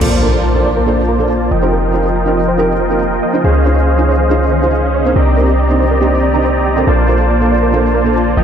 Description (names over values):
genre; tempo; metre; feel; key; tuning
future bass; 140 BPM; 4/4; half-time; Bb major; A4 = 440 Hz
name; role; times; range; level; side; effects
shimmering ambient pad; sustained chords; 1.4-8.4 s; C3 to C5; -24 LUFS; right 1 dB; chorus, built-in reverb, phaser
soft round pluck; arpeggios; 0.0-8.4 s; G4 to Bb5; -21 LUFS; equal; chorus, cassette tape, ping-pong delay
supersaw chords; riff; 0.0-8.4 s; F3 to Bb5; -14 LUFS; equal; cassette tape, low-pass filter, ping-pong delay
warm 808-style bass; bass; 0.0-8.4 s; F1 to Db2; -15 LUFS; equal; tube saturation
impact; sound effects; 0.0-1.7 s; none; -24 LUFS; left 1 dB; none
felt-muted upright piano; accompaniment; 0.2-8.1 s; Bb2 to C5; -20 LUFS; right 4 dB; ping-pong delay
room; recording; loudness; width
light reverb, digital ambience; tape stop; -10 LUFS; side -8 dB against mid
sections
0.0-8.4 A section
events
impact 0.0-1.7; filter sweep on ambient pad 0.0-8.4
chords
0.0 Bbmaj7; 1.5 F7sus4; 3.4 Dbmaj9; 5.2 Cm9; 6.9 Bbmaj7